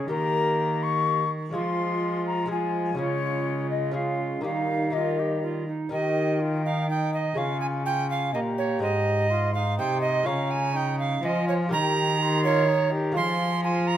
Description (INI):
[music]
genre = classical, renaissance-style consort dance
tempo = 124 BPM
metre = 3/4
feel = straight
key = Eb mixolydian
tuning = A4 = 440 Hz
[part]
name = silver concert flute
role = melody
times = 0.0-14.0 s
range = Db5 to Db6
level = -30 LUFS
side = left 5 dB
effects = none
[part]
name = bright tenor recorder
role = second line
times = 0.0-14.0 s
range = Eb4 to C6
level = -28 LUFS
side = right 5 dB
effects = none
[part]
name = brilliant trombone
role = accompaniment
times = 0.0-14.0 s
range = G3 to G4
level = -33 LUFS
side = left 2 dB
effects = none
[part]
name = lute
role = accompaniment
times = 0.0-14.0 s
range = Ab2 to Db5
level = -33 LUFS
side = left 2 dB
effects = none
[part]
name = dark cello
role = bass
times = 0.0-14.0 s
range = Ab2 to F3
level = -28 LUFS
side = equal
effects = none
[sound]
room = moderate recital hall reverb, RT60 1.5 s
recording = close, detailed microphones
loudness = -23 LUFS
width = side -11 dB against mid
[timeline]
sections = 0.0-5.9 A section; 5.9-14.0 A section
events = none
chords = 0.1 Eb; 1.5 Fm; 3.0 Db; 4.4 Eb; 7.4 Db; 8.8 Ab; 10.3 Db; 11.7 Eb; 13.2 Fm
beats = | 0.10 0.59 1.07 | 1.55 2.03 2.51 | 2.99 3.47 3.96 | 4.45 4.94 5.43 | 5.92 6.40 6.89 | 7.37 7.86 8.34 | 8.83 9.31 9.79 | 10.27 10.75 11.23 | 11.72 12.20 12.68 | 13.16 13.64